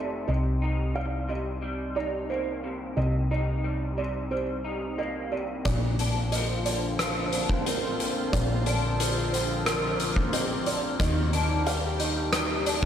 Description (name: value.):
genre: post-rock.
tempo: 90 BPM.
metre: 4/4.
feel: straight.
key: C minor.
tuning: A4 = 438 Hz.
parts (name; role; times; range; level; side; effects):
electric guitar through a small old amp; arpeggios; 0.0-12.9 s; Bb2 to Eb4; -32 LUFS; left 1 dB; analog chorus, slapback echo.
felt-muted upright piano; arpeggios; 0.0-12.9 s; Bb4 to F5; -34 LUFS; right 5 dB; slapback echo.
hollow-body short-scale picked electric bass; bass; 0.0-12.9 s; F1 to Eb2; -30 LUFS; equal; none.
evolving wavetable pad; sustained chords; 6.3-12.9 s; D3 to G4; -33 LUFS; left 1 dB; phaser, built-in reverb.
oversized low-tuned drum kit; drums; 5.7-12.9 s; hi-hat, kick drum, rim click; -28 LUFS; left 1 dB; none.
room: light reverb, studio reverb.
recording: none.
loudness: -25 LUFS.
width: side -9 dB against mid.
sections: 0.0-12.9 A section.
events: none.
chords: 0.3 Cm7; 5.7 Bbadd9; 11.0 Ebmaj7.